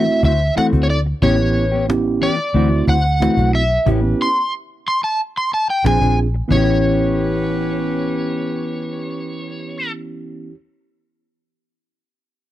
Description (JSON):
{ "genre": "straight-eighth soul blues", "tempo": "91 BPM", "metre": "4/4", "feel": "straight", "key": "A mixolydian", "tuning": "A4 = 436 Hz", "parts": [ { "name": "overdriven slide guitar", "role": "melody", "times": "0.0-9.9 s", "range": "C#5 to C6", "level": "-20 LUFS", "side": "equal", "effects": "none" }, { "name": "mellow tine electric piano", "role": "accompaniment", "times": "0.0-10.5 s", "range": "A3 to A4", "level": "-21 LUFS", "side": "right 4 dB", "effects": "none" }, { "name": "mellow electric guitar", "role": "stabs", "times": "0.0-10.6 s", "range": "E3 to Ab4", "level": "-23 LUFS", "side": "left 7 dB", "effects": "none" }, { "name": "cajon", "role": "drums", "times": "0.1-6.7 s", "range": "none", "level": "-22 LUFS", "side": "equal", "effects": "none" }, { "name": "dark horn section", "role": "sustained chords", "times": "0.2-9.9 s", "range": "B3 to C5", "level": "-28 LUFS", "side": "equal", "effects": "none" }, { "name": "vintage muted fingered electric bass", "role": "bass", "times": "0.2-10.5 s", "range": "A1 to D2", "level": "-18 LUFS", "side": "equal", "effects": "none" } ], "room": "studio ambience", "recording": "dry, close 1970s-style studio recording", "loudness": "-15 LUFS", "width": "side -13 dB against mid", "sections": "0.0-6.5 A section; 6.5-9.1 B section", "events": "stop 3.9-5.8", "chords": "0.0 D9; 1.2 A9; 2.5 D9; 3.9 A9; 5.8 Bb9; 6.5 A9", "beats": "0.56 | 1.23 1.89 2.55 3.21 | 3.87 4.53 5.19 5.85 | 6.51 7.17 7.83 8.49" }